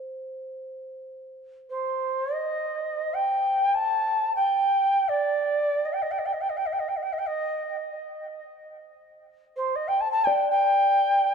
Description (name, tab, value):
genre	world meditative, free-time meditation music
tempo	free time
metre	none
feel	none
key	C kumoi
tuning	A4 = 440 Hz
part	bronze singing bowl	texture	0.0-11.3 s	C5 to D5	-34 LUFS	equal	none
part	reedy Native American-style cedar flute	melody	1.7-11.3 s	C5 to A5	-23 LUFS	equal	tape echo
room	wet scoring stage reverb, RT60 1.9 s, small room ambience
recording	dark, warm production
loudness	-22 LUFS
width	side -6 dB against mid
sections	0.0-11.3 A section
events	none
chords	none